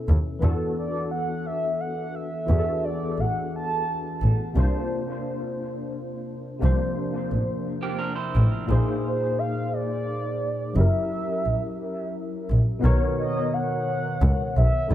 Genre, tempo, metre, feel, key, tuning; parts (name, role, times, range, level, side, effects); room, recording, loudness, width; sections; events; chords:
slow six-eight R&B; 58 BPM (dotted quarters); 6/8; straight; A4 = 436 Hz
barky tine electric piano; accompaniment; 0.0-14.9 s; A#2 to C#5; -28 LUFS; left 1 dB; overdrive, ensemble chorus, analog delay
warm double bass; bass; 0.1-14.9 s; F#1 to E2; -21 LUFS; equal
mellow horn-like synth lead; melody; 0.8-4.3, 9.1-14.9 s; B#4 to A5; -29 LUFS; right 1 dB; chorus, phaser, analog delay
electric guitar through a small old amp; second line; 7.8-8.7 s; Bb3 to C5; -32 LUFS; right 6 dB; analog delay
light reverb; echo-heavy mix; -23 LUFS; side -12 dB against mid
0.0-12.8 A section; 12.8-14.9 B section
0.4 E9sus4; 4.5 C9sus4; 8.7 A#9sus4; 10.8 F#7b9; 12.8 Bmaj9